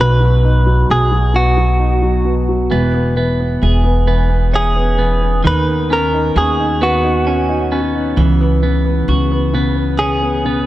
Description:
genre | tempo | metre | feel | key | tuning
pop | 44 BPM (dotted quarters) | 6/8 | straight | B major | A4 = 439 Hz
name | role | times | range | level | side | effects
direct-recorded clean electric guitar | melody | 0.0-10.7 s | F#4 to B4 | -17 LUFS | right 1 dB | vibrato effect
clear baby grand piano | accompaniment | 0.0-10.7 s | B2 to D#4 | -19 LUFS | left 2 dB | none
upright bass | bass | 0.0-10.7 s | E1 to D#2 | -15 LUFS | equal | none
twelve-string electric guitar | arpeggios | 2.7-10.7 s | D#3 to G#4 | -20 LUFS | right 4 dB | spring reverb
room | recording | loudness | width
light reverb, studio reverb | dark, warm production | -12 LUFS | side -15 dB against mid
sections
0.0-10.7 A section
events
none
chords
0.0 B; 2.7 E6; 5.4 Badd9/D#; 8.2 F#7sus4/C#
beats
1.35 | 2.71 4.08 | 5.44 6.80 | 8.17 9.53

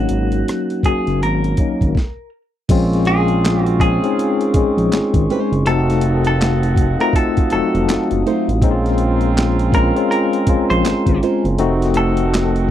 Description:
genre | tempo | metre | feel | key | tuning
R&B, neo-soul | 81 BPM | 4/4 | swing 61% on 16ths | Bb minor | A4 = 440 Hz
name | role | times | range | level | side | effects
semi-hollow electric guitar | melody | 0.0-12.7 s | Gb4 to C5 | -22 LUFS | equal | slapback echo
bright tine electric piano | accompaniment | 0.0-12.7 s | Gb3 to Ab4 | -18 LUFS | left 3 dB | medium stereo tremolo
smooth gliding synth bass | bass | 0.0-12.7 s | F1 to Bb1 | -18 LUFS | right 1 dB | none
boom bap sampler-style drum kit | drums | 0.1-12.7 s | crash cymbal, handclaps, hi-hat, kick drum, rim click, snare drum | -18 LUFS | right 1 dB | none
glass harmonica | sustained chords | 2.7-12.7 s | A4 to Eb6 | -30 LUFS | left 4 dB | stereo widening
clear horn section | stabs | 2.7-12.7 s | Db3 to Gb4 | -28 LUFS | right 12 dB | none
flamenco guitar | second line | 4.9-11.4 s | Ab3 to C5 | -21 LUFS | right 8 dB | none
room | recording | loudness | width
little or no reverb | dry, close 1970s-style studio recording | -14 LUFS | side -11 dB against mid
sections
0.0-2.7 A section; 2.7-12.7 B section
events
stop 2.0-2.7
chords
0.0 Ab9sus4; 2.7 Bbm9; 5.7 F7b9; 8.6 Bbm9; 11.6 F7b9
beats
0.47 1.21 1.95 | 2.69 3.43 4.17 4.91 | 5.65 6.39 7.14 7.88 | 8.62 9.36 10.10 10.84 | 11.58 12.32

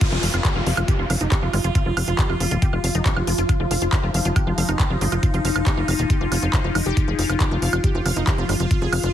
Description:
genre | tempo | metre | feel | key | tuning
psychedelic trance | 138 BPM | 4/4 | straight | unclear | A4 = 440 Hz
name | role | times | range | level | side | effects
evolving wavetable pad | sustained chords | 1.2-9.1 s | F3 to F4 | -27 LUFS | left 2 dB | phaser, built-in reverb, sidechain pumping
wide unison pluck | riff | 0.0-9.1 s | Eb4 to F5 | -28 LUFS | moving between left 8 dB and right 9 dB | auto-pan, sidechain pumping, dub echo
electronic kick drum | drums | 0.0-8.8 s | none | -20 LUFS | equal | none
techno drum kit | drums | 0.0-9.1 s | crash cymbal, handclaps, hi-hat, woodblock | -26 LUFS | right 2 dB | none
downlifter | sound effects | 0.0-3.5 s | none | -30 LUFS | equal | none
tight sequencer bass | bass | 0.1-9.1 s | Eb1 to G1 | -22 LUFS | equal | tube saturation
room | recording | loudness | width
little or no reverb | heavily compressed radio sound, multiband compression | -18 LUFS | side -11 dB against mid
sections
0.0-9.1 A section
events
drop 0.0-9.1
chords
0.0 F5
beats
| 0.01 0.45 0.88 1.32 | 1.75 2.19 2.62 3.06 | 3.49 3.93 4.36 4.79 | 5.23 5.67 6.10 6.53 | 6.97 7.40 7.84 8.27 | 8.71

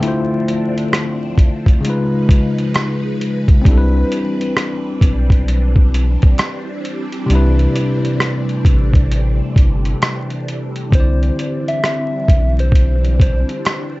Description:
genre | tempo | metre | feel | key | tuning
lo-fi hip hop | 66 BPM | 4/4 | swing 62% on 16ths | C major | A4 = 439 Hz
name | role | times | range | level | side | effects
bell-like tine electric piano | accompaniment | 0.0-14.0 s | C3 to G5 | -20 LUFS | left 1 dB | fast stereo tremolo
phased string machine | sustained chords | 0.0-14.0 s | Db3 to Cb5 | -26 LUFS | right 1 dB | ensemble chorus, phaser
lo-fi sampler-style drum kit | drums | 0.0-13.9 s | hi-hat, kick drum, rim click | -13 LUFS | equal | vintage 12-bit sampler grit
finger snaps | percussion | 0.9-13.9 s | none | -34 LUFS | right 3 dB | none
soft dub sub bass | bass | 3.7-13.4 s | G1 to C2 | -15 LUFS | equal | none
soft struck synth lead | melody | 10.9-13.9 s | C5 to E5 | -23 LUFS | equal | chorus, tremolo, plate reverb
room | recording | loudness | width
light reverb | vinyl crackle, nothing above 7.8 kHz | -13 LUFS | side -20 dB against mid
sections
0.0-10.9 A section; 10.9-14.0 B section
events
break 0.0-3.7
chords
0.0 Dm7; 1.8 Db9; 3.7 Cmaj9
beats
| 0.02 0.93 1.84 2.75 | 3.65 4.56 5.47 6.38 | 7.29 8.20 9.11 10.02 | 10.93 11.84 12.74 13.65

